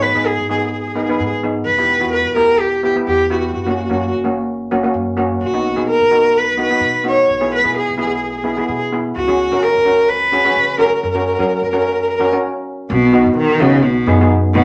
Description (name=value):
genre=calypso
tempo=128 BPM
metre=4/4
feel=swing 54% on 16ths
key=B major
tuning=A4 = 439 Hz
part: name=rich cello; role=melody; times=0.0-14.6 s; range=B2 to C#5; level=-17 LUFS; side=equal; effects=none
part: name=steel pan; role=accompaniment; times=0.0-14.6 s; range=A#3 to B4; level=-21 LUFS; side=equal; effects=none
part: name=upright bass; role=bass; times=0.0-14.6 s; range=E1 to F#3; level=-27 LUFS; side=equal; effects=none
room=wet studio reverb, RT60 0.6 s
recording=none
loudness=-16 LUFS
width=mono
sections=0.0-12.9 A section; 12.9-14.6 B section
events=stop 12.4-12.9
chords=0.0 G#m; 1.7 Em; 3.5 F#; 5.4 B; 7.3 E/B; 9.2 C#sus4; 11.0 F#; 12.9 B